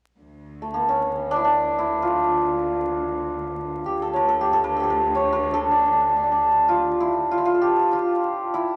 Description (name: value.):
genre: persian.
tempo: free time.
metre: none.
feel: none.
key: D avaz esfahan.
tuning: A4 = 440 Hz.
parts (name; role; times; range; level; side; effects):
bright symphonic cello section; drone; 0.2-7.7 s; D2; -37 LUFS; equal; none.
santur; melody; 0.6-8.8 s; A3 to C#5; -22 LUFS; equal; none.
room: wet club reverb, RT60 0.8 s.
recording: vinyl crackle.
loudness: -22 LUFS.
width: mono.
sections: 0.2-7.6 A section; 7.6-8.8 B section.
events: none.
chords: none.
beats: free time.